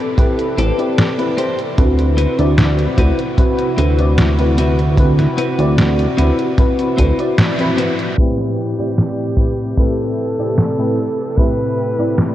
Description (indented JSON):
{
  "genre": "vaporwave",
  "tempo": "75 BPM",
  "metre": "4/4",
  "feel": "straight",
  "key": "A dorian",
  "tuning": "A4 = 441 Hz",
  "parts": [
    { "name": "FM electric piano with soft pad layer", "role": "accompaniment", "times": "0.0-12.3 s", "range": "A2 to D5", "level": "-19 LUFS", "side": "left 1 dB", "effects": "lush chorus, diffuse ambient delay" },
    { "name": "warbly tape-like pad", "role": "sustained chords", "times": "0.0-12.3 s", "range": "C3 to B4", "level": "-25 LUFS", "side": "equal", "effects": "chorus, built-in reverb, phaser, vintage 12-bit sampler grit" },
    { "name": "detuned 8-bit digital drum machine", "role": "drums", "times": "0.2-12.3 s", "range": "hi-hat, snare drum", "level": "-20 LUFS", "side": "equal", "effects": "none" },
    { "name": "kick drum", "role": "drums", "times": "0.2-11.5 s", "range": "none", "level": "-14 LUFS", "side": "equal", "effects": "none" },
    { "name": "clean electric guitar", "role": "riff", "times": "0.6-8.0 s", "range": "C4 to C5", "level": "-25 LUFS", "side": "left 2 dB", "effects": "wide subtle chorus, diffuse ambient delay" },
    { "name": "chorused synth bass", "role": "bass", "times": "0.6-7.1 s", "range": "A1 to D2", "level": "-14 LUFS", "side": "equal", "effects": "none" },
    { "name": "warm alto saxophone", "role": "melody", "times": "8.2-12.3 s", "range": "G4 to B4", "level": "-22 LUFS", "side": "right 1 dB", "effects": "tape echo" }
  ],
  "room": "moderate huge ambient reverb, RT60 7.1 s",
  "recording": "dreamy mix soaked in reverb, cassette tape, low-pass filter",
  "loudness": "-13 LUFS",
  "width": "side -13 dB against mid",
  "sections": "0.0-8.2 A section; 8.2-12.3 B section",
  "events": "band accent 7.4-7.8; filter sweep 8.2-12.3",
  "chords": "0.0 Am9; 1.8 D13; 8.2 Am9"
}